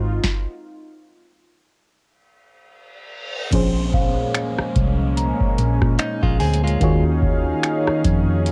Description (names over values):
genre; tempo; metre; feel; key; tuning
contemporary R&B; 73 BPM; 4/4; swing 58% on 16ths; Bb minor; A4 = 442 Hz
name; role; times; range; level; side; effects
warm analog pad; sustained chords; 0.0-8.5 s; Eb3 to F5; -28 LUFS; equal; subtle chorus, cassette tape
vintage muted fingered electric bass; bass; 0.0-8.5 s; Ab1 to Bb2; -22 LUFS; equal; none
booming analog drum machine; drums; 0.2-8.5 s; crash cymbal, finger snaps, hi-hat, kick drum, rim click, snare drum; -24 LUFS; equal; cassette tape
reverse cymbal and downlifter; sound effects; 2.8-8.5 s; none; -38 LUFS; equal; none
mellow FM electric piano; accompaniment; 3.5-8.5 s; Bb2 to Db5; -28 LUFS; equal; chorus, cassette tape
celesta; texture; 3.9-7.2 s; F5 to Bb5; -34 LUFS; equal; cassette tape, analog delay
direct-recorded clean electric guitar; arpeggios; 6.0-7.0 s; Ab3 to Ab4; -29 LUFS; equal; spring reverb, cassette tape, analog delay
room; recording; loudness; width
light reverb; home recording on cassette; -20 LUFS; mono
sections
0.0-3.5 A section; 3.5-8.5 B section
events
stop 0.2-3.5; reverse cymbal 2.8-3.5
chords
0.0 Fm7/Ab; 3.5 Bbm7; 6.8 Ebm11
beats
| 0.24 1.06 1.88 2.70 | 3.52 4.35 5.17 5.99 | 6.81 7.63 8.46